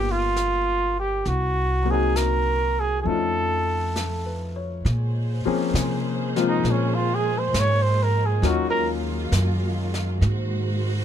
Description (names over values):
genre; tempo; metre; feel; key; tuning
jazz ballad; 67 BPM; 4/4; swing 68% on 8ths; Bb minor; A4 = 440 Hz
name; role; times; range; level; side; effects
mellow trumpet; melody; 0.0-8.9 s; Db4 to Db5; -24 LUFS; right 2 dB; none
clear grand piano; accompaniment; 0.0-10.2 s; F3 to C#5; -27 LUFS; left 7 dB; none
upright bass; bass; 0.0-11.0 s; G1 to C3; -24 LUFS; right 1 dB; none
jazz brush drum kit; drums; 0.4-11.0 s; brushed snare drum, hi-hat, snare drum; -35 LUFS; left 1 dB; none
warm symphonic string section; sustained chords; 4.8-11.0 s; Eb3 to C5; -31 LUFS; right 2 dB; none
room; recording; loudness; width
little or no reverb; close, detailed microphones; -21 LUFS; side -9 dB against mid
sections
0.0-4.9 A section; 4.9-11.0 B section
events
trumpet solo 4.9-11.0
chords
0.0 G7alt; 1.3 Cm7b5; 3.1 Faug7; 4.9 Bbm9; 8.4 Ebm9; 10.2 Ab9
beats
0.36 | 1.26 2.15 3.05 3.95 | 4.85 5.75 6.65 7.54 | 8.43 9.32 10.21